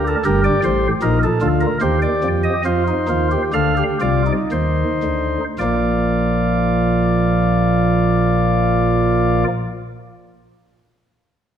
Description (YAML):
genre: classical, baroque-style 3-part fugue for pipe organ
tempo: 53-81 BPM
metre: 3/4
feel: straight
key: Bb major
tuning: A4 = 441 Hz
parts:
  - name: chamber organ, flutes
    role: solo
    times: 0.0-9.5 s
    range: G1 to F5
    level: -15 LUFS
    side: equal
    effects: none
room: wet scoring stage reverb, RT60 1.7 s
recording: none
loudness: -15 LUFS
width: side -9 dB against mid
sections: 0.0-5.6 A section; 5.6-9.0 B section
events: slowing down 0.0-5.6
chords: 0.3 Eb/G; 1.8 Eb; 2.6 F7; 5.6 Bb